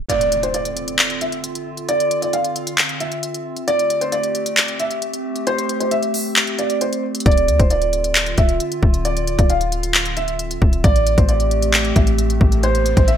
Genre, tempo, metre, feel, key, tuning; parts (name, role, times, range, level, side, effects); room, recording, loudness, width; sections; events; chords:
hip hop, trap; 134 BPM; 4/4; half-time; D minor; A4 = 440 Hz
warbly tape-like pad; sustained chords; 0.0-13.2 s; D3 to G4; -26 LUFS; equal; chorus, built-in reverb
reverse cymbal, impact and riser; sound effects; 0.1-1.9, 12.2-13.2 s; -32 LUFS; equal
dark concert grand piano; melody; 0.1-13.2 s; C5 to F5; -21 LUFS; right 1 dB; lush chorus, digital delay
trap drum kit; drums; 0.1-13.2 s; handclaps, hi-hat, kick drum; -18 LUFS; left 1 dB; gated reverb
clean 808-style bass; bass; 7.3-13.2 s; D1 to D2; -20 LUFS; equal
light reverb, digital ambience; bright 1980s-style digital production, tape stop; -16 LUFS; side -9 dB against mid
0.1-13.2 A section
kick muted 0.1-7.3; impact 0.1-1.9
0.1 Dm7; 3.7 Am7; 7.3 Dm7; 10.8 Am7